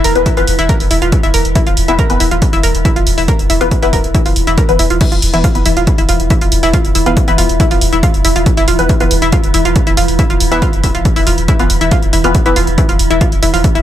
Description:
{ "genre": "driving peak-time techno", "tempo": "139 BPM", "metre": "4/4", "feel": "straight", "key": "unclear", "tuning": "A4 = 440 Hz", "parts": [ { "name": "analog pluck", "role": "riff", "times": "0.0-13.8 s", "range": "E4 to A#4", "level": "-16 LUFS", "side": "equal", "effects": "chorus, sidechain pumping, dub echo" }, { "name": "warm sub bass", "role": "bass", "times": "0.0-13.8 s", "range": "E1", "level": "-16 LUFS", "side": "equal", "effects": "overdrive, sidechain pumping, low-pass filter" }, { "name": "metallic inharmonic drone", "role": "drone", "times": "0.0-13.8 s", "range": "E3 to E4", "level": "-20 LUFS", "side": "right 1 dB", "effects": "chorus, built-in reverb, sidechain pumping" }, { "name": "punchy analog drum machine", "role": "drums", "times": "0.0-13.8 s", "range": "crash cymbal, hi-hat", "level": "-20 LUFS", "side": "right 2 dB", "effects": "none" }, { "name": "filtered dub chord stab", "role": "stabs", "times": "0.2-12.6 s", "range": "E3 to B4", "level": "-18 LUFS", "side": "left 4 dB", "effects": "phaser, wide subtle chorus, vintage 12-bit sampler grit, sidechain pumping, dub echo" }, { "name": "electronic kick drum", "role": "drums", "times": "0.3-13.7 s", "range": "none", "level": "-13 LUFS", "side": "equal", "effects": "none" } ], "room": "digital ambience", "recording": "none", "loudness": "-9 LUFS", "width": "side -11 dB against mid", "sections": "0.0-13.8 A section", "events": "none", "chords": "0.0 E5", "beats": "0.26 0.69 1.12 | 1.56 1.99 2.42 2.85 | 3.28 3.71 4.15 4.58 | 5.01 5.44 5.87 6.30 | 6.74 7.17 7.60 8.03 | 8.46 8.89 9.32 9.76 | 10.19 10.62 11.05 11.48 | 11.91 12.35 12.78 13.21 | 13.64" }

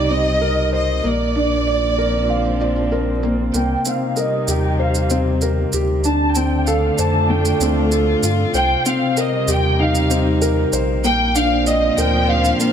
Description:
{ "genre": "piano and strings electronica", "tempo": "96 BPM", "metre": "4/4", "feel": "straight", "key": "C dorian", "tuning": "A4 = 440 Hz", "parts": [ { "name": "warm studio violin section", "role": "melody", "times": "0.0-12.6 s", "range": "D5 to A5", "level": "-21 LUFS", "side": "equal", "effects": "low-pass filter, ping-pong delay" }, { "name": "dark string quartet", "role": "sustained chords", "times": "0.0-12.7 s", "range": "Bb2 to F4", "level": "-22 LUFS", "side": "right 1 dB", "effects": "none" }, { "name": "felt-muted upright piano", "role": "riff", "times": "0.0-12.7 s", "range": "A3 to F5", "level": "-20 LUFS", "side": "left 1 dB", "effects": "ping-pong delay" }, { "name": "warm sub bass", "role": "bass", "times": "0.0-12.5 s", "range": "Bb1 to G2", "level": "-21 LUFS", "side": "equal", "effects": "none" }, { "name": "shaker", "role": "drums", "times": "0.1-12.7 s", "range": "none", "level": "-26 LUFS", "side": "right 4 dB", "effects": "overdrive, high-pass filter on perc, low-pass filter on perc, high-pass filter on room, low-pass filter on room" } ], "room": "moderate concert hall reverb, RT60 2.5 s", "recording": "none", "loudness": "-15 LUFS", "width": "side -8 dB against mid", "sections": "0.0-3.5 A section; 3.5-12.7 B section", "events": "build-up 3.5-12.7; filter sweep on violin section 3.5-12.7", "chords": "0.0 Cm7; 1.0 Bb; 3.5 Cm7; 6.0 Dm7; 8.5 Cm7; 11.0 Bb", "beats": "0.42 | 1.05 1.67 2.30 2.92 | 3.55 4.17 4.80 5.42 | 6.05 6.67 7.30 7.92 | 8.55 9.17 9.80 10.42 | 11.05 11.67 12.30" }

